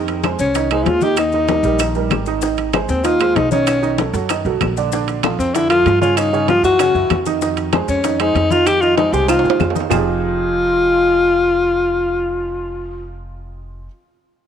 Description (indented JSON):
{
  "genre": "Afro-Cuban jazz",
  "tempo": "192 BPM",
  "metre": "4/4",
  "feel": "straight",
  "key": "F minor",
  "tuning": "A4 = 443 Hz",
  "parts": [
    { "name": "warm baby grand piano", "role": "accompaniment", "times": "0.0-13.9 s", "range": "Db3 to Eb5", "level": "-22 LUFS", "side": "right 11 dB", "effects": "none" },
    { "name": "upright bass", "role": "bass", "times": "0.0-13.9 s", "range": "F1 to G2", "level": "-24 LUFS", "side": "equal", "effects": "none" },
    { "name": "bongos", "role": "percussion", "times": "0.1-10.0 s", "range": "none", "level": "-26 LUFS", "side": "left 12 dB", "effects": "none" },
    { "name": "congas", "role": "percussion", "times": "0.1-10.0 s", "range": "none", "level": "-24 LUFS", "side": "left 10 dB", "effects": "none" },
    { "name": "maracas", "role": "percussion", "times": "0.1-10.0 s", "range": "none", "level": "-33 LUFS", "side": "left 13 dB", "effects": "none" },
    { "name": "timbales", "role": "percussion", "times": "0.1-10.0 s", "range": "none", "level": "-24 LUFS", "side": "right 12 dB", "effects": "none" },
    { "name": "claves", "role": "percussion", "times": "0.2-10.0 s", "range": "none", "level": "-28 LUFS", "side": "right 13 dB", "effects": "none" },
    { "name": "breathy alto saxophone", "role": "melody", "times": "0.4-13.2 s", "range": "C4 to G4", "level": "-16 LUFS", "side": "left 2 dB", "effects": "none" }
  ],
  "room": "light reverb",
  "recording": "1960s-style stereo with parts hard left and right",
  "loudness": "-14 LUFS",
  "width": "side -8 dB against mid",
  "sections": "0.0-9.9 A section; 9.9-12.4 B section",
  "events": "drum fill 9.3-9.9",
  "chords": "0.0 Fm7; 1.2 Eb; 2.4 Ab6; 3.7 B9; 4.9 Bbmaj7; 6.2 Em69; 6.8 Gb5; 7.4 Fm7; 9.9 Fm9"
}